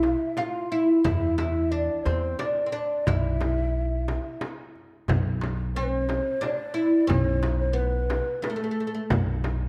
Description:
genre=Arabic maqam ensemble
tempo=89 BPM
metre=3/4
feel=straight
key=B maqam bayati from 5.1 s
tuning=A4 = 440 Hz
part: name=oud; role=melody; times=0.0-9.0 s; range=A3 to F4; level=-29 LUFS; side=equal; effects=none
part: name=breathy mellow ney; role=second line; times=0.0-9.1 s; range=A4 to F5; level=-34 LUFS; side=equal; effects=none
part: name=upright bass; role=bass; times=0.0-9.7 s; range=B1 to E2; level=-30 LUFS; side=equal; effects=none
part: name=darbuka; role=percussion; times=0.0-9.6 s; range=none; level=-34 LUFS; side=equal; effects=none
part: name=frame drum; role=percussion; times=0.0-9.6 s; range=none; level=-34 LUFS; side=equal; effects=none
room=light reverb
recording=dark, warm production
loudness=-26 LUFS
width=mono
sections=0.0-5.1 A section; 5.1-9.7 B section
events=none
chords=none

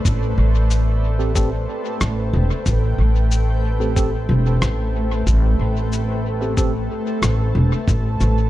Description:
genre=ambient dub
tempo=92 BPM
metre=4/4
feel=straight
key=A minor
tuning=A4 = 437 Hz
part: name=granular cloud pad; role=sustained chords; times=0.0-8.5 s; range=A3 to A5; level=-25 LUFS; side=equal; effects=built-in reverb
part: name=upright bass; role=bass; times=0.0-8.5 s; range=E1 to A1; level=-18 LUFS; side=equal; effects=none
part: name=electronic cabasa and rim click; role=drums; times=0.1-8.3 s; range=none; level=-29 LUFS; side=left 1 dB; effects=dub echo
part: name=electronic kick drum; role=drums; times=0.1-8.0 s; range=none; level=-20 LUFS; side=equal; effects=none
part: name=tine electric piano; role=stabs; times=1.2-6.7 s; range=C4 to A4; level=-29 LUFS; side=right 2 dB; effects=medium stereo tremolo, dub echo
room=digital ambience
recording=echo-heavy mix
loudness=-17 LUFS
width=side -15 dB against mid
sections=0.0-8.5 A section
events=none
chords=0.0 Am7

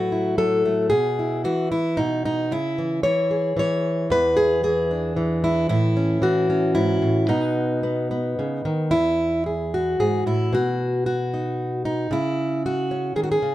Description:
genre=folk, solo fingerstyle acoustic guitar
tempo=113 BPM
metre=3/4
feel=straight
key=E major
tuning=A4 = 440 Hz
part: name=fingerpicked plugged-in steel-string acoustic guitar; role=solo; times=0.0-13.5 s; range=E2 to C#5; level=-20 LUFS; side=equal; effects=none
room=light reverb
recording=none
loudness=-20 LUFS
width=side -14 dB against mid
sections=0.0-8.9 A section; 8.9-13.5 B section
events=none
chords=0.0 F#m7/A; 0.9 E/B; 2.0 N.C.; 2.5 C#m; 4.1 E7; 5.7 A; 7.3 Badd9; 8.9 E; 10.5 B; 12.1 C#m

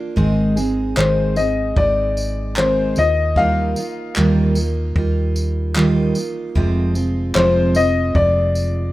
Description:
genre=acoustic pop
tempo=75 BPM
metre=4/4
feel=straight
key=Eb major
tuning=A4 = 440 Hz
part: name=picked steel-string acoustic guitar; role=accompaniment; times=0.0-8.9 s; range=F2 to Ab4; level=-20 LUFS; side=right 1 dB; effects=none
part: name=hollow-body short-scale fingered electric bass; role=bass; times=0.2-8.9 s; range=F1 to Eb2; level=-21 LUFS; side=equal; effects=none
part: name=compact cocktail drum kit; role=drums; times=0.2-8.7 s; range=handclaps, kick drum, tambourine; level=-23 LUFS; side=equal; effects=none
part: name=dark upright piano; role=melody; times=1.0-8.9 s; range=C5 to F5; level=-18 LUFS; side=left 3 dB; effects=none
room=studio ambience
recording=rough home demo mix, faint mains hum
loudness=-15 LUFS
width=side -16 dB against mid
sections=0.0-8.9 A section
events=none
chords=0.2 Ab; 3.0 Ebadd9; 6.6 Fm

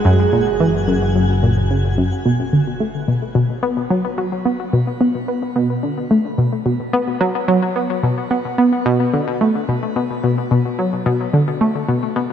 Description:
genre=ambient, sequencer-driven space music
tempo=109 BPM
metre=4/4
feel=straight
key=B minor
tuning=A4 = 440 Hz
part: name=soft octave-layered synth lead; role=melody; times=0.0-1.7 s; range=G#4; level=-23 LUFS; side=right 6 dB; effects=chorus, phaser, shimmer reverb, ping-pong delay
part: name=analog drone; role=bass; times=0.0-2.2 s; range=F#1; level=-20 LUFS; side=equal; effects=chorus
part: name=twinkling granular texture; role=texture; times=0.0-2.3 s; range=F#4 to G#5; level=-29 LUFS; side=left 1 dB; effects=built-in reverb, shimmer reverb
part: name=analog pluck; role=riff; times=0.1-12.2 s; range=F#2 to B3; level=-16 LUFS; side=equal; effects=chorus, shimmer reverb, ping-pong delay
room=moderate lush hall reverb, RT60 2.8 s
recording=dark, warm production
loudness=-15 LUFS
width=side -8 dB against mid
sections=0.0-2.3 A section; 2.3-12.3 B section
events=none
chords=0.1 F#; 2.3 N.C.

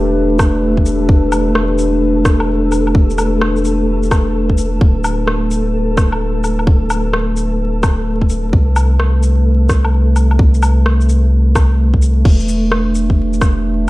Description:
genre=future garage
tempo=129 BPM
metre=4/4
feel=swing 65% on 16ths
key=E minor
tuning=A4 = 444 Hz
part: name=dark analog pad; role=sustained chords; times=0.0-13.9 s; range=A3 to B4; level=-18 LUFS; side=equal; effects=chorus, sidechain pumping
part: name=soft dub sub bass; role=bass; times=0.0-13.9 s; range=D1 to C2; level=-15 LUFS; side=equal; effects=sidechain pumping
part: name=flickering grainy texture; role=texture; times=0.0-12.3 s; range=A3 to A4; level=-25 LUFS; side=left 2 dB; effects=built-in reverb
part: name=electronic kick drum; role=drums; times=0.4-13.5 s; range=none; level=-12 LUFS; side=equal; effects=studio reverb
part: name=organic electronic drum kit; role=drums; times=0.4-13.5 s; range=crash cymbal, rim click, shaker, woodblock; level=-20 LUFS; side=left 1 dB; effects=studio reverb
room=light reverb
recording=vinyl crackle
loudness=-11 LUFS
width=side -18 dB against mid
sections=0.0-12.3 A section; 12.3-13.9 B section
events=none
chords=0.0 Em7; 4.8 Dsus4; 8.5 Csus2; 12.3 Em7

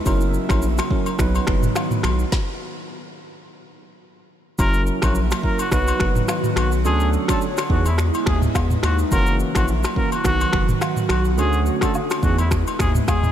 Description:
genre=afrobeats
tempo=106 BPM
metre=4/4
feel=swing 55% on 16ths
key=F# mixolydian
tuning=A4 = 439 Hz
part: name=airy breathy pad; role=sustained chords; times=0.0-13.3 s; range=C#3 to C#5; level=-27 LUFS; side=equal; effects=chorus, phaser, sidechain pumping
part: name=barky tine electric piano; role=accompaniment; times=0.1-12.4 s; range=D3 to B4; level=-26 LUFS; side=moving between left 2 dB and right 7 dB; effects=auto-pan
part: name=round analog bass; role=bass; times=0.1-13.3 s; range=F#1 to E2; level=-21 LUFS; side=equal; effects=none
part: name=afro-pop drum kit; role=drums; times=0.1-13.3 s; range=finger snaps, kick drum, rim click, shaker, snare drum, toms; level=-23 LUFS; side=equal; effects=none
part: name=agogo bells and woodblock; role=percussion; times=0.1-13.2 s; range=none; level=-30 LUFS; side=left 4 dB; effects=none
part: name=breathy trumpet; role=melody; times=4.6-13.3 s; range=E4 to A#4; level=-26 LUFS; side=left 1 dB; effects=diffuse ambient delay
room=light reverb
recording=none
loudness=-17 LUFS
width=side -10 dB against mid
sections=0.0-4.6 A section; 4.6-13.3 A section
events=stop 2.3-4.6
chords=0.1 F#7; 1.2 B; 2.3 N.C.; 4.6 F#7; 5.7 B; 6.9 Dmaj7; 7.7 Emaj7; 9.1 F#7; 10.2 B; 11.4 Dmaj7; 12.2 Emaj7

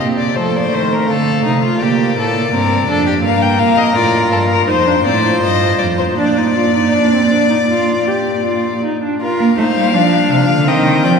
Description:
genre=classical, baroque-style fugue for string quartet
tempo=81 BPM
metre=4/4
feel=uneven beats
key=Bb major from 3.2 s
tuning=A4 = 440 Hz
part: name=warm violin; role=melody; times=0.0-11.2 s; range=A4 to G5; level=-18 LUFS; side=left 7 dB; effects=none
part: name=rich violin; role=second line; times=0.0-11.1 s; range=Eb4 to F5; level=-20 LUFS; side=left 3 dB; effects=none
part: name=rich viola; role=accompaniment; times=0.0-11.2 s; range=A3 to G4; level=-18 LUFS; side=right 1 dB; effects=none
part: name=warm cello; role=bass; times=0.0-11.2 s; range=F2 to Bb3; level=-16 LUFS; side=right 4 dB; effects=none
room=wet cathedral reverb, RT60 6.2 s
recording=recorded in a church or concert hall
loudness=-12 LUFS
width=side -5 dB against mid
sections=0.0-9.2 A section; 9.2-11.2 B section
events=none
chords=0.4 F7; 1.8 Bb; 3.2 Gm; 4.7 F7; 6.2 Bb; 10.7 Cm/Eb

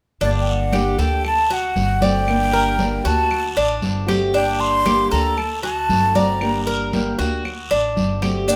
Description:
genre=latin, Cuban son and guajira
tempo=116 BPM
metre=4/4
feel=straight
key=G harmonic minor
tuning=A4 = 440 Hz
part: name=breathy jazz flute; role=melody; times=0.2-8.6 s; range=D5 to C6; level=-23 LUFS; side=equal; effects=none
part: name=picked old ladder-braced acoustic guitar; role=accompaniment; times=0.2-8.6 s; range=D3 to G4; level=-28 LUFS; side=equal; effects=none
part: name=Cuban tres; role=arpeggios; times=0.2-8.6 s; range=D4 to D5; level=-25 LUFS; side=equal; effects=none
part: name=upright bass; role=bass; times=0.2-8.6 s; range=G1 to D2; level=-27 LUFS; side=equal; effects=none
part: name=congas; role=percussion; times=0.2-8.6 s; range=none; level=-27 LUFS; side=equal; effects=none
part: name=guiro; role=percussion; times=0.2-8.6 s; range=none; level=-36 LUFS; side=equal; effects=none
part: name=claves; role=percussion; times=0.7-8.5 s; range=none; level=-36 LUFS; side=equal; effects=none
part: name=maracas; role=percussion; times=8.5-8.6 s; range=none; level=-26 LUFS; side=equal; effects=none
room=moderate large studio reverb, RT60 1.0 s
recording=none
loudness=-19 LUFS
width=mono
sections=0.2-8.6 A section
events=none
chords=0.2 Gm; 1.2 D7; 2.3 Gm; 3.3 D7; 4.3 Gm; 5.4 D7; 6.4 Gm; 7.4 D7

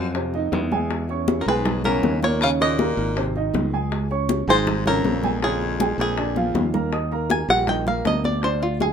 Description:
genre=Afro-Cuban jazz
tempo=159 BPM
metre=4/4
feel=straight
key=unclear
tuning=A4 = 440 Hz
part: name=bluegrass banjo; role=melody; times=0.0-8.9 s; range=F4 to Ab5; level=-24 LUFS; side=equal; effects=none
part: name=bright baritone saxophone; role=second line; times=0.0-6.7 s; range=E2 to Db3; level=-27 LUFS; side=left 4 dB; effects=none
part: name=warm upright piano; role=accompaniment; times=0.0-8.9 s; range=C3 to Eb6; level=-25 LUFS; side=right 4 dB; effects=none
part: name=modern bright fingered electric bass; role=bass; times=0.0-8.9 s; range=Ab1 to F2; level=-26 LUFS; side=equal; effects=none
part: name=bongos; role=percussion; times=0.1-8.9 s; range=none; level=-30 LUFS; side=left 5 dB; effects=none
part: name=congas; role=percussion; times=0.1-8.9 s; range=none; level=-27 LUFS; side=left 2 dB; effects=none
room=moderate club reverb, RT60 0.7 s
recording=minimal, uncompressed stereo recording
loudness=-19 LUFS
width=side -7 dB against mid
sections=0.0-6.9 A section; 6.9-8.9 B section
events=drum fill 6.4-6.9; five-string banjo solo 6.9-8.9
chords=0.2 F7; 0.9 E6; 2.4 Eb5; 3.2 Ab; 3.9 Dbmaj7; 5.4 Bbm7; 6.2 Bb7; 6.9 Ebmaj7

